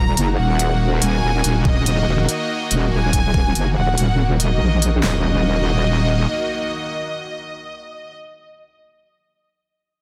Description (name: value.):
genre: heavy wobble dubstep.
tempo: 142 BPM.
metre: 4/4.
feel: half-time.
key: Eb minor.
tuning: A4 = 441 Hz.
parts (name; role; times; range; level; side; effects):
warm symphonic violin section; melody; 0.0-8.1 s; Eb5 to Bb5; -27 LUFS; equal; tape echo.
supersaw chords; sustained chords; 0.0-8.1 s; Eb3 to Gb4; -28 LUFS; equal; sidechain pumping.
wobble bass; bass; 0.0-6.3 s; Eb1 to Bb1; -20 LUFS; equal; chorus, overdrive.
electronic hi-hat; drums; 0.2-4.9 s; none; -24 LUFS; equal; none.
dubstep drum kit; drums; 1.7-5.1 s; handclaps, kick drum, snare drum; -21 LUFS; equal; overdrive.
impact; sound effects; 5.1-8.2 s; none; -31 LUFS; equal; none.
room: light reverb, digital ambience.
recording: none.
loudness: -19 LUFS.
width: mono.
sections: 0.0-5.0 A section; 5.0-8.4 B section.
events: filter sweep on wobble bass 0.0-5.0.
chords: 0.0 Ebm.